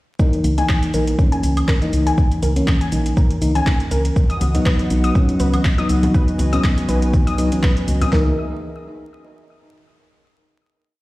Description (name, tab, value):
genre	deep house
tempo	121 BPM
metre	4/4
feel	swing 55% on 16ths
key	C# dorian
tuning	A4 = 438 Hz
part	warbly dusty pluck	arpeggios	0.2-8.4 s	A#4 to D#6	-27 LUFS	left 2 dB	chorus, sidechain pumping, tape echo
part	mellow FM electric piano	stabs	0.2-8.3 s	E3 to D#4	-21 LUFS	equal	chorus, cassette tape, sidechain pumping, tape echo
part	deep house drum kit	drums	0.2-8.3 s	kick drum, snare drum, toms	-17 LUFS	equal	none
part	deep house drum kit	drums	0.2-8.1 s	handclaps, hi-hat, shaker, woodblock	-29 LUFS	equal	none
part	woody FM bass	bass	0.4-8.4 s	A#1 to C#2	-19 LUFS	equal	tube saturation, sidechain pumping
part	hollow soft pad	sustained chords	4.2-8.4 s	F#4 to G#5	-31 LUFS	equal	chorus, sidechain pumping
part	congas	percussion	4.4-8.1 s	none	-27 LUFS	left 1 dB	none
room	light reverb, digital ambience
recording	played on a big sound system in a bare room, stone room reverb, vinyl crackle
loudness	-15 LUFS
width	side -18 dB against mid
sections	0.2-8.1 drop; 8.1-10.1 final chord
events	drop 0.2-8.1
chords	0.2 C#m69; 4.2 B; 8.1 C#m69 (rootless)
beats	| 0.19 0.69 1.19 1.68 | 2.18 2.67 3.17 3.67 | 4.16 4.66 5.15 5.65 | 6.14 6.64 7.14 7.63 | 8.13